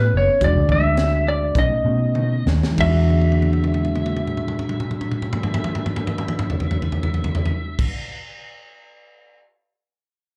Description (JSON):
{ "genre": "straight-eighth soul blues", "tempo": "93-111 BPM", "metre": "4/4", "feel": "straight", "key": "E mixolydian", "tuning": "A4 = 440 Hz", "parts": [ { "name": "clean lap steel guitar", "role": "melody", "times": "0.0-7.9 s", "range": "B4 to E5", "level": "-27 LUFS", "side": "equal", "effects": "slapback echo" }, { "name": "mellow tine electric piano", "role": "accompaniment", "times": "0.0-7.9 s", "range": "G#3 to G4", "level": "-30 LUFS", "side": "equal", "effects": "slapback echo" }, { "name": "mellow electric guitar", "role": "stabs", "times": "0.0-8.0 s", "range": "B2 to F#4", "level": "-32 LUFS", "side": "equal", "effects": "none" }, { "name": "vintage muted fingered electric bass", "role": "bass", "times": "0.0-7.9 s", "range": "E1 to B2", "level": "-22 LUFS", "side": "equal", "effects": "none" }, { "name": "tight funk drum kit", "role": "drums", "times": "0.4-9.4 s", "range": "crash cymbal, hi-hat, kick drum, snare drum, toms", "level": "-26 LUFS", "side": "equal", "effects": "none" } ], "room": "small room ambience", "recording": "live gig heard through the venue's PA, club reverb", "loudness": "-20 LUFS", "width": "mono", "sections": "0.0-2.8 A section; 2.8-7.9 B section", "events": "slowing down 0.0-2.8; drum fill 2.2-2.8, 3.1-7.8", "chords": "0.4 E9; 1.6 B9; 2.8 E9" }